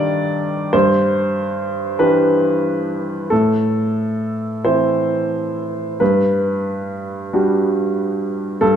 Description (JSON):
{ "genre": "neoclassical minimalist piano", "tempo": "46 BPM (dotted quarters)", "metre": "6/8", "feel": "uneven beats, rubato", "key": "G major", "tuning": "A4 = 441 Hz", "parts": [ { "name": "clear upright piano", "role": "solo", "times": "0.0-8.8 s", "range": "G2 to D5", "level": "-16 LUFS", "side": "equal", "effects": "none" } ], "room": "moderate concert hall reverb, RT60 1.9 s", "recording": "minimal, uncompressed stereo recording", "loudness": "-16 LUFS", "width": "side -8 dB against mid", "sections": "0.0-8.8 A section", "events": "none", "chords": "0.0 Ebmaj7/G; 0.7 Cadd9/G; 3.3 Am; 6.0 Gmaj7" }